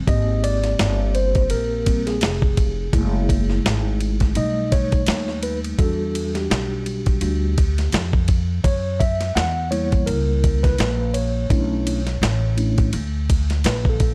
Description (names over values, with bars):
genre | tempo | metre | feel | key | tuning
hip hop, jazz-hop | 84 BPM | 4/4 | swing 58% on 16ths | unclear | A4 = 437 Hz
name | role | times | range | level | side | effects
mellow tine electric piano | accompaniment | 0.0-14.1 s | G3 to F#5 | -27 LUFS | equal | none
upright bass | bass | 0.0-14.1 s | E#1 to F#2 | -25 LUFS | equal | none
dusty soul sampler-style drum kit | drums | 0.1-14.1 s | hi-hat, kick drum, ride cymbal, snare drum | -24 LUFS | equal | none
room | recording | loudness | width
digital ambience | none | -20 LUFS | mono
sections
0.0-14.1 A section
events
tine electric piano solo 0.0-14.1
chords
0.1 G#maj9; 2.9 F#m9; 4.4 B7b13; 5.8 Em9; 8.6 F#7b9; 11.5 Bm11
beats
| 0.07 0.79 1.50 2.22 | 2.93 3.65 4.36 5.08 | 5.79 6.50 7.22 7.93 | 8.65 9.36 10.07 10.79 | 11.50 12.22 12.93 13.65